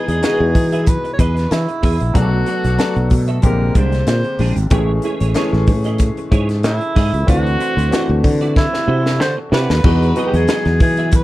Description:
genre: polished 1980s jazz-funk pop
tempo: 94 BPM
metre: 4/4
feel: swing 54% on 16ths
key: E major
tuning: A4 = 440 Hz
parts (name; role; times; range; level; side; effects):
- breathy alto saxophone; melody; 0.0-11.2 s; E4 to C#5; -21 LUFS; right 1 dB; none
- clear grand piano; accompaniment; 0.0-11.2 s; D3 to A4; -22 LUFS; left 2 dB; wide subtle chorus
- clean electric guitar; riff; 0.0-11.1 s; G#3 to E5; -25 LUFS; right 4 dB; ensemble chorus
- sustaining fretless electric bass; bass; 0.1-11.2 s; G#1 to E3; -16 LUFS; equal; none
- crisp fusion drum kit; drums; 0.1-11.2 s; crash cymbal, hi-hat, kick drum, snare drum; -17 LUFS; equal; none
room: little or no reverb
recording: none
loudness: -13 LUFS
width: side -16 dB against mid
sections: 0.0-9.8 A section; 9.8-11.2 B section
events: drum fill 8.6-9.8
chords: 0.0 Emaj7; 2.2 Bm7; 3.4 A#13; 4.7 Amaj7; 7.3 D9; 9.8 Emaj9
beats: 0.23 0.87 1.51 | 2.15 2.79 3.44 4.08 | 4.72 5.36 6.00 6.64 | 7.28 7.92 8.56 9.20 | 9.84 10.48 11.12

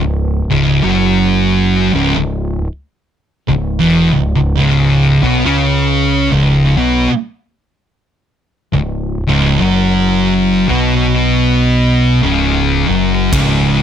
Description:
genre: stoner and doom metal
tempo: 55 BPM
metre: 4/4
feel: swing 59% on 8ths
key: C# minor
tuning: A4 = 441 Hz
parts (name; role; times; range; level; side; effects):
- thick fuzz guitar; riff; 0.0-13.8 s; C#2 to C#4; -14 LUFS; left 6 dB; distortion
- thick fuzz guitar; riff; 0.0-13.8 s; C#2 to C#4; -15 LUFS; right 9 dB; distortion
- growling picked electric bass; bass; 0.0-13.8 s; C#1 to C#2; -18 LUFS; equal; overdrive
- big rock drum kit; drums; 13.3-13.6 s; kick drum, ride cymbal; -18 LUFS; equal; none
room: little or no reverb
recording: none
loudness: -11 LUFS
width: side -9 dB against mid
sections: 0.0-13.8 A section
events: none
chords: none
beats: | 0.18 1.28 2.38 3.48 | 4.57 5.67 6.76 7.86 | 8.95 10.05 11.14 12.23 | 13.33

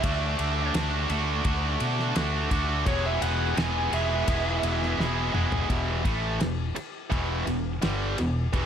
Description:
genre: classic rock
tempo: 85 BPM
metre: 4/4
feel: straight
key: E mixolydian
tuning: A4 = 440 Hz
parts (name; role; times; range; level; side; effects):
- lead guitar through a small cranked amp; melody; 0.0-5.7 s; C#5 to G#5; -31 LUFS; right 2 dB; overdrive
- tight distorted guitar; riff; 0.0-8.7 s; E2 to G#4; -27 LUFS; right 1 dB; distortion
- fingered electric bass; bass; 0.0-8.7 s; E1 to B2; -30 LUFS; equal; none
- damped 70s drum kit; drums; 0.0-8.7 s; kick drum, ride cymbal, snare drum, toms; -31 LUFS; equal; none
room: studio ambience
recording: none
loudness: -24 LUFS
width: side -8 dB against mid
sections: 0.0-5.7 A section; 5.7-8.7 B section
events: lead electric guitar solo 0.0-5.7; drum fill 5.0-5.7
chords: 0.0 D; 2.9 E; 5.7 E5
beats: | 0.03 0.74 1.45 2.15 | 2.86 3.57 4.28 4.99 | 5.70 6.40 7.11 7.82 | 8.53

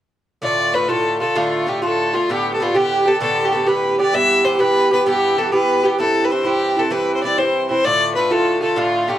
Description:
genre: celtic folk, Celtic slide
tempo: 129 BPM (dotted quarters)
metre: 12/8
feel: straight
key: D dorian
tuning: A4 = 442 Hz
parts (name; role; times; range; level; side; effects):
- rich fiddle; melody; 0.4-9.2 s; F4 to E5; -18 LUFS; left 1 dB; none
- Irish bouzouki; accompaniment; 0.4-9.2 s; G2 to G4; -18 LUFS; right 2 dB; none
room: small room ambience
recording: dry, close 1970s-style studio recording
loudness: -15 LUFS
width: side -12 dB against mid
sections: 0.4-9.2 A section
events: none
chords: 0.4 Dm; 2.3 Gadd9; 4.1 Em/G; 6.0 C; 7.8 Dm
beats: | 0.43 0.89 1.35 1.82 | 2.28 2.75 3.21 3.68 | 4.14 4.60 5.07 5.53 | 5.99 6.46 6.92 7.38 | 7.84 8.31 8.77

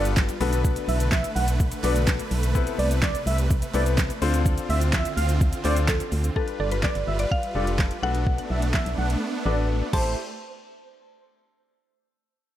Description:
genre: dance-pop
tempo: 126 BPM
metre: 4/4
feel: straight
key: unclear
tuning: A4 = 440 Hz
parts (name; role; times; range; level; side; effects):
- wide unison lead; melody; 0.0-10.2 s; C5 to F#5; -31 LUFS; right 3 dB; digital delay
- bright concert grand piano; accompaniment; 0.0-10.2 s; B3 to C5; -30 LUFS; left 7 dB; sidechain pumping
- supersaw chords; sustained chords; 0.0-10.2 s; C3 to C5; -32 LUFS; right 1 dB; sidechain pumping
- organ-like FM bass; bass; 0.0-10.2 s; F1 to D2; -25 LUFS; equal; sidechain pumping
- smooth R&B drum kit; drums; 0.1-10.0 s; crash cymbal, handclaps, hi-hat, kick drum, shaker, snare drum; -25 LUFS; equal; none
- group handclap; percussion; 0.2-6.0 s; none; -41 LUFS; right 9 dB; none
- mallet-like synth pluck; melody; 5.9-10.2 s; A4 to A5; -31 LUFS; left 1 dB; chorus, digital delay
room: digital ambience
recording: none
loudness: -21 LUFS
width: side -12 dB against mid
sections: 0.0-6.4 A section; 6.4-10.2 B section; 10.2-12.1 C section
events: drop 0.0-6.4; silent gap 9.2-10.2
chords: 0.4 Bm7; 2.6 Amadd9; 4.2 Dm7; 6.4 G7; 8.0 Bm7; 9.9 Am7; 10.2 N.C.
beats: 0.17 | 0.65 1.12 1.60 2.07 | 2.55 3.03 3.50 3.98 | 4.46 4.93 5.41 5.88 | 6.36 6.84 7.31 7.79 | 8.27 8.74 9.22 9.69

